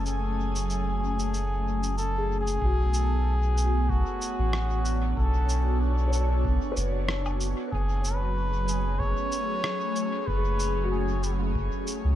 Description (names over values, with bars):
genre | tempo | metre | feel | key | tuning
ambient dub | 94 BPM | 4/4 | swing 54% on 16ths | unclear | A4 = 441 Hz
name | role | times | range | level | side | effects
trumpet with cup mute | melody | 0.0-11.5 s | F#4 to C#5 | -32 LUFS | equal | dub echo
airy breathy pad | sustained chords | 0.0-12.2 s | F#3 to G#5 | -32 LUFS | equal | chorus, phaser
felt-muted upright piano | arpeggios | 0.0-12.2 s | F#4 to C#5 | -38 LUFS | left 4 dB | dub echo
soft dub sub bass | bass | 0.0-12.2 s | F#1 to C#2 | -26 LUFS | equal | none
electronic shaker, rim click and woodblock | drums | 0.1-12.0 s | none | -36 LUFS | right 1 dB | dub echo
electronic kick drum | drums | 2.6-11.7 s | none | -34 LUFS | equal | none
room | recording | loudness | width
light reverb, digital ambience | none | -24 LUFS | side -12 dB against mid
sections
0.0-2.6 A section; 2.6-12.2 B section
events
filter sweep on felt piano 0.0-2.6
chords
0.0 F#madd9; 2.6 Bm7; 7.7 F#madd9